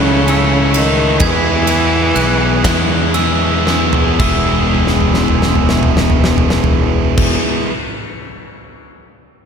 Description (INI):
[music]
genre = post-rock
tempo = 37-45 BPM (dotted quarters)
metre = 6/8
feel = straight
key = E major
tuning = A4 = 439 Hz
[part]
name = bright cello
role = melody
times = 0.0-3.2 s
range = C#3 to E3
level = -17 LUFS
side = equal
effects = slapback echo, digital delay
[part]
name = pedal steel guitar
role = sustained chords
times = 0.0-7.4 s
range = E3 to E6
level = -31 LUFS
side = left 1 dB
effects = none
[part]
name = glockenspiel with hard plastic mallets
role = arpeggios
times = 0.0-7.4 s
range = E6 to G#6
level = -24 LUFS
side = right 4 dB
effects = slapback echo, digital delay
[part]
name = biting overdriven guitar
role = riff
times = 0.0-7.7 s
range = C#3 to A4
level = -19 LUFS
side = left 13 dB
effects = none
[part]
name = tight distorted guitar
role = riff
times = 0.0-7.7 s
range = C#3 to G#4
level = -20 LUFS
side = right 11 dB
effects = distortion
[part]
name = fuzz fingered electric bass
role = bass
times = 0.0-7.3 s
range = E1 to E2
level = -17 LUFS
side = equal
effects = overdrive
[part]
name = huge arena drum kit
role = drums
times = 0.3-8.9 s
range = crash cymbal, kick drum, ride cymbal, snare drum, toms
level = -17 LUFS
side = equal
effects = none
[sound]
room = light reverb, small room reverb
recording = none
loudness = -11 LUFS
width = side -6 dB against mid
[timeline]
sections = 0.0-4.2 A section; 4.2-7.4 B section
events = slowing down 0.0-4.2; drum fill 3.7-4.2, 4.7-7.2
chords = 0.0 A/C#; 1.2 E